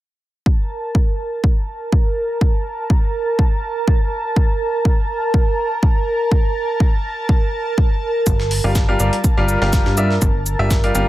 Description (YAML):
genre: piano house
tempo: 123 BPM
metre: 4/4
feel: swing 54% on 16ths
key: G minor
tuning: A4 = 440 Hz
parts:
  - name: analog string pad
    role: sustained chords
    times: 0.5-11.1 s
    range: Bb4 to A5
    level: -22 LUFS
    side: right 2 dB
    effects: ensemble chorus, sidechain pumping
  - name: electronic kick drum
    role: drums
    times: 0.5-10.8 s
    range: none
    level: -15 LUFS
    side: equal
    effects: none
  - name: plucky analog bass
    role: bass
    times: 8.3-11.1 s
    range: G1 to G2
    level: -19 LUFS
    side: equal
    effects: tube saturation, sidechain pumping
  - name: breakbeat sampler-style drum kit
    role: drums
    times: 8.3-11.1 s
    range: hi-hat, shaker, snare drum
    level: -26 LUFS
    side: equal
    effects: overdrive, sidechain pumping on perc, high-pass filter on perc, high-pass filter on snare, sidechain pumping on hats, high-pass filter on hats, high-pass filter on room
  - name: bright upright piano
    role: riff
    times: 8.6-11.1 s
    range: G3 to F5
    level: -20 LUFS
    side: left 1 dB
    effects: sidechain pumping, tape echo
room: little or no reverb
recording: none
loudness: -15 LUFS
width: side -15 dB against mid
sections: 0.5-11.1 A section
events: none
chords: 0.5 N.C.; 8.3 Gm7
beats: | 0.46 0.95 1.44 1.93 | 2.41 2.90 3.39 3.88 | 4.36 4.85 5.34 5.83 | 6.32 6.80 7.29 7.78 | 8.27 8.75 9.24 9.73 | 10.22 10.71